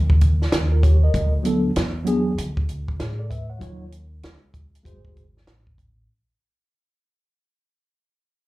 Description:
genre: hip hop, jazz-hop.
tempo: 97 BPM.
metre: 4/4.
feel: swing 64% on 16ths.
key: unclear.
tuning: A4 = 436 Hz.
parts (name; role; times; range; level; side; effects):
upright bass; bass; 0.0-6.1 s; Ab1 to A2; -22 LUFS; equal; none.
compact cocktail drum kit; drums; 0.1-6.0 s; hi-hat, kick drum, snare drum; -20 LUFS; equal; none.
mellow tine electric piano; accompaniment; 0.7-5.2 s; F#3 to F#5; -24 LUFS; equal; medium stereo tremolo, slapback echo.
room: light reverb.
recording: live gig heard through the venue's PA, club reverb.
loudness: -18 LUFS.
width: side -19 dB against mid.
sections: 0.0-6.1 A section.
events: fade-out 0.0-6.1.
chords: 0.0 Eb7; 1.1 D6; 3.6 Ebm9; 4.9 Ab7b9.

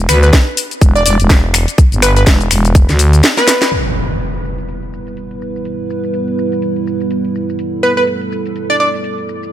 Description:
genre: bass house.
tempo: 124 BPM.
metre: 4/4.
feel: swing 58% on 16ths.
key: E minor.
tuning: A4 = 440 Hz.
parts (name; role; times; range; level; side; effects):
growling FM bass; bass; 0.0-3.2 s; E1 to D2; -11 LUFS; equal; tube saturation, sidechain pumping.
plucky unison lead; melody; 0.1-3.7, 7.8-8.9 s; B4 to D5; -16 LUFS; equal; dub echo.
garage drum kit; drums; 0.1-9.5 s; crash cymbal, finger snaps, hi-hat, shaker, snare drum; -15 LUFS; left 1 dB; low-pass filter on hats, low-pass filter on perc, low-pass filter on snare, low-pass filter on cymbals.
electronic kick drum; drums; 0.3-2.9 s; none; -8 LUFS; equal; none.
dark analog pad; sustained chords; 3.7-9.5 s; G3 to B4; -19 LUFS; right 2 dB; chorus, sidechain pumping.
impact; sound effects; 3.7-5.7 s; none; -21 LUFS; equal; none.
room: light reverb, digital ambience.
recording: none.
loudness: -11 LUFS.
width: side -12 dB against mid.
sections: 0.0-3.7 A section; 3.7-9.5 B section.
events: kick drops out 3.2-3.7; drum fill 3.4-3.7; band accent 3.6; impact 3.7-5.7.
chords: 0.0 E5; 3.7 Em.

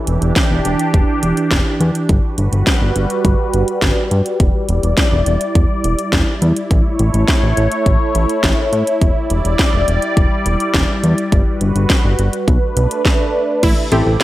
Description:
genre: synth-pop.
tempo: 104 BPM.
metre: 4/4.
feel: straight.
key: E dorian.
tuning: A4 = 439 Hz.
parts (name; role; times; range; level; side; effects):
phased analog pad; sustained chords; 0.0-14.2 s; C3 to D5; -18 LUFS; equal; phaser, chorus.
fat analog bass; bass; 0.1-14.2 s; E1 to A2; -16 LUFS; equal; none.
house drum kit; drums; 0.1-14.2 s; crash cymbal, hi-hat, kick drum, snare drum; -15 LUFS; equal; gated reverb.
wide unison pluck; arpeggios; 13.6-14.2 s; E4 to G4; -20 LUFS; right 3 dB; tape echo.
warm analog keys; accompaniment; 13.9-14.1 s; C4 to A4; -16 LUFS; left 2 dB; chorus.
room: light reverb.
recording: none.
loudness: -13 LUFS.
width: side -15 dB against mid.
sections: 0.0-13.6 A section.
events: none.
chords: 0.0 Em7; 2.1 Gmaj7; 4.4 Em7; 6.7 A; 9.0 Em7; 11.3 Gmaj7; 12.5 Bm7; 13.6 Am7.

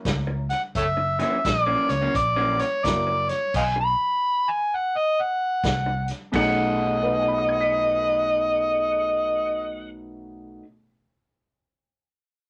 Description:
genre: electric blues shuffle.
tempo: 86 BPM.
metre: 4/4.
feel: swing 64% on 8ths.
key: B mixolydian.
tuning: A4 = 440 Hz.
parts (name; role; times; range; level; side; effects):
dark upright piano; accompaniment; 0.0-10.9 s; B2 to B6; -32 LUFS; equal; none.
fingered electric bass; bass; 0.1-10.6 s; F#1 to C#2; -33 LUFS; equal; none.
vintage drum kit; drums; 0.1-6.5 s; crash cymbal, hi-hat, kick drum, snare drum; -33 LUFS; equal; none.
electric guitar through a small old amp; riff; 0.3-10.6 s; F#2 to G#4; -33 LUFS; equal; none.
overdriven harmonica; melody; 0.5-9.9 s; A4 to B5; -24 LUFS; equal; none.
clean lap steel guitar; second line; 6.4-9.9 s; F#5; -34 LUFS; equal; none.
room: moderate small room reverb, RT60 0.5 s.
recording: none.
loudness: -23 LUFS.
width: mono.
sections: 0.0-6.3 A section; 6.3-9.1 B section.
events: none.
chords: 0.0 F#7; 3.5 B5; 5.6 N.C.; 6.3 B13.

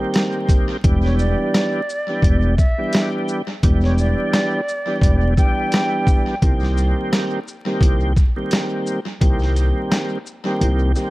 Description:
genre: hip hop, boom-bap hip-hop.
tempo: 86 BPM.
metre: 4/4.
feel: swing 56% on 16ths.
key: unclear.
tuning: A4 = 440 Hz.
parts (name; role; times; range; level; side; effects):
tonewheel organ; accompaniment; 0.0-11.1 s; Eb3 to G4; -23 LUFS; equal; chorus vibrato, slow rotary speaker, high-pass filter, low-pass filter.
boom bap sampler-style drum kit; drums; 0.1-11.1 s; hi-hat, kick drum, rim click, shaker, snare drum; -18 LUFS; equal; tape echo.
upright bass; bass; 0.8-10.9 s; E1 to C2; -18 LUFS; equal; none.
silver concert flute; melody; 1.0-6.4 s; C#5 to G5; -25 LUFS; right 1 dB; high-pass filter, low-pass filter, tape echo.
room: digital ambience.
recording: echo-heavy mix, vinyl crackle.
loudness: -16 LUFS.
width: side -19 dB against mid.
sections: 0.0-11.1 A section.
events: kick muted 10.6-11.1.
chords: 0.0 Cm7; 0.8 Em7; 6.4 Cm7.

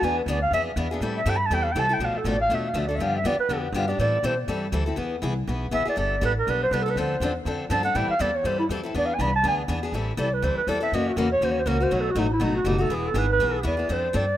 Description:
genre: acoustic string swing (jazz manouche).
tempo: 242 BPM.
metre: 4/4.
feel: swing 56% on 8ths.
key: A minor.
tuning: A4 = 436 Hz.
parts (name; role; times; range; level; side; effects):
breathy clarinet; melody; 0.0-14.4 s; D#4 to B5; -25 LUFS; right 1 dB; none.
picked steel-string acoustic guitar; accompaniment; 0.0-14.2 s; B2 to A4; -27 LUFS; left 3 dB; none.
upright bass; bass; 0.0-14.4 s; E1 to B2; -28 LUFS; equal; none.
room: light reverb, small room ambience.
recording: rough home demo mix.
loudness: -22 LUFS.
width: side -12 dB against mid.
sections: 0.0-2.0 A section; 2.0-9.9 A section; 9.9-14.4 A section.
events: clarinet solo 0.0-9.9, 9.9-14.4.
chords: 0.0 E7; 1.0 Am7; 2.0 Bm7b5; 3.0 G7; 4.0 Am7; 5.0 E; 6.0 Gadd9; 7.0 Dm7; 7.9 Am7; 8.9 E7; 9.9 Am7; 10.9 F#7; 11.9 B7; 12.9 E.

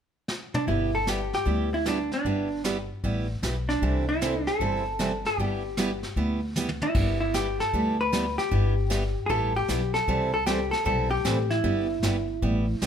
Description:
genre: country, western swing.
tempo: 153 BPM.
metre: 4/4.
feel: swing 66% on 8ths.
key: G major.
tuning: A4 = 440 Hz.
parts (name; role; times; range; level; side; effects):
vintage brush drum kit; drums; 0.3-12.9 s; brushed snare drum, crash cymbal, hi-hat, kick drum, snare drum, toms; -32 LUFS; equal; none.
vintage hollow-body jazz guitar; melody; 0.6-12.9 s; D4 to B4; -27 LUFS; equal; plate reverb.
picked steel-string acoustic guitar; accompaniment; 0.7-12.9 s; C3 to A4; -30 LUFS; right 3 dB; none.
upright bass; bass; 0.7-12.9 s; G1 to D2; -28 LUFS; left 1 dB; none.
room: light reverb.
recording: none.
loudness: -24 LUFS.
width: side -8 dB against mid.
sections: 0.7-7.0 A section; 7.0-12.9 B section.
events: drum fill 0.3-0.7, 6.6-7.0.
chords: 0.0 N.C.; 0.7 G6; 3.8 C6; 5.4 G6; 10.1 C6; 11.6 G6.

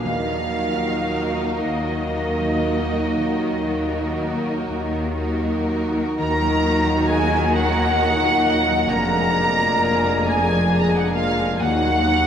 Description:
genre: classical, slow romantic movement for symphony orchestra.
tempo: 38-46 BPM (dotted quarters).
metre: 12/8.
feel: rubato.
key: Eb minor.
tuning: A4 = 441 Hz.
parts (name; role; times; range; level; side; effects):
rich symphonic violin section; melody; 0.0-12.3 s; Eb5 to Bb5; -24 LUFS; equal; none.
mellow hollow silver concert flute; second line; 0.0-12.3 s; Eb5 to Bb5; -27 LUFS; right 1 dB; none.
warm symphonic violin section; second line; 0.0-12.3 s; D4 to Bb4; -30 LUFS; right 1 dB; none.
mellow bassoon; accompaniment; 0.0-5.4 s; Bb3; -32 LUFS; left 2 dB; none.
rich symphonic viola section; accompaniment; 0.0-12.3 s; Bb3 to Eb4; -28 LUFS; left 1 dB; none.
dark trombone section; sustained chords; 0.0-12.3 s; Bb2 to Ab3; -29 LUFS; right 1 dB; none.
warm French horn section; sustained chords; 0.0-12.3 s; Bb3 to Eb4; -30 LUFS; equal; none.
concert harp; arpeggios; 0.0-12.3 s; Eb3 to Bb5; -28 LUFS; left 1 dB; none.
rich symphonic cello section; bass; 0.1-12.3 s; Eb2 to Eb3; -27 LUFS; equal; none.
rich symphonic double bass section; bass; 0.1-12.3 s; F1 to Eb2; -27 LUFS; equal; none.
timpani; percussion; 0.1-1.6 s; Eb3; -39 LUFS; right 3 dB; none.
dark clarinet; second line; 6.2-12.3 s; F4 to Bb4; -28 LUFS; left 4 dB; none.
room: wet cathedral reverb, RT60 5.7 s.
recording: in a vast, echoing space.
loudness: -18 LUFS.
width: side -8 dB against mid.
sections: 0.0-6.2 A section; 6.2-12.3 B section.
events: none.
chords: 0.1 Ebm; 8.9 Bb7/F; 11.6 Ebm.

